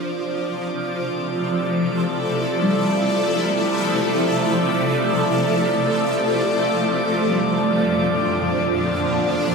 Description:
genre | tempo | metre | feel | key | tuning
ambient | free time | none | none | F major | A4 = 439 Hz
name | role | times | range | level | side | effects
shimmering ambient pad | sustained chords | 0.0-9.5 s | F2 to A4 | -20 LUFS | equal | chorus, built-in reverb, phaser
drifting glass-harmonics texture | texture | 0.0-9.5 s | D5 to D6 | -24 LUFS | right 2 dB | chorus, built-in reverb
kalimba | arpeggios | 2.6-9.5 s | G3 to A3 | -30 LUFS | left 1 dB | none
room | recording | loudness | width
wet huge ambient reverb, RT60 7.8 s | in a vast, echoing space | -18 LUFS | side -4 dB against mid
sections
0.0-9.5 A section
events
none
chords
0.0 Fmaj7; 6.8 Bb/F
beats
free time

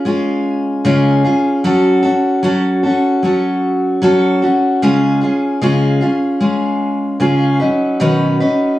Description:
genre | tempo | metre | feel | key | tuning
pop | 76 BPM | 4/4 | swing 55% on 16ths | Db mixolydian | A4 = 441 Hz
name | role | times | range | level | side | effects
picked steel-string acoustic guitar | solo | 0.0-8.8 s | Cb3 to Cb5 | -12 LUFS | equal | slapback echo
room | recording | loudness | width
moderate studio reverb, RT60 0.6 s | worn, warbling old tape, cassette tape, warbly pitch drift, small room ambience | -12 LUFS | side -15 dB against mid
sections
0.0-8.8 A section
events
none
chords
0.0 Db; 1.6 Gbm; 4.8 Db; 7.6 Cbadd9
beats
0.05 0.85 | 1.64 2.43 3.23 4.02 | 4.82 5.61 6.41 7.20 | 8.00

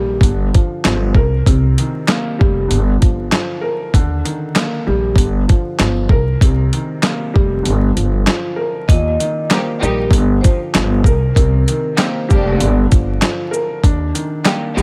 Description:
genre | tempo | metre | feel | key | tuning
hip hop, boom-bap hip-hop | 97 BPM | 4/4 | swing 59% on 16ths | G minor | A4 = 440 Hz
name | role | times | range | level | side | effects
dark upright piano | accompaniment | 0.0-14.8 s | Bb2 to Bb4 | -23 LUFS | equal | high-pass filter, low-pass filter
upright bass | bass | 0.0-14.8 s | F1 to Eb2 | -19 LUFS | equal | none
dusty soul sampler-style drum kit | drums | 0.2-14.8 s | handclaps, hi-hat, kick drum, shaker, snare drum | -16 LUFS | equal | none
vibraphone with medium hard mallets | melody | 8.9-12.8 s | Bb4 to Eb5 | -26 LUFS | equal | high-pass filter, low-pass filter, tape echo
rich studio string section | stabs | 9.5-14.8 s | G3 to G4 | -26 LUFS | equal | high-pass filter, low-pass filter, tape echo
room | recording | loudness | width
small room ambience | vinyl crackle | -15 LUFS | mono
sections
0.0-8.9 A section; 8.9-14.8 B section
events
break 0.0-3.9; kick muted 7.6-8.9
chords
0.2 G5; 1.2 Cm7; 2.7 Gm7; 3.9 Ebmaj7; 5.2 G5; 6.1 Cm7; 7.6 Gm7; 8.9 Eb; 10.1 G5; 11.1 Cm7; 12.6 Gm7; 13.8 Ebmaj7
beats
0.23 0.84 | 1.46 2.08 2.70 3.32 | 3.94 4.56 5.17 5.79 | 6.41 7.03 7.65 8.27 | 8.89 9.51 10.12 10.74 | 11.36 11.98 12.60 13.22 | 13.84 14.45

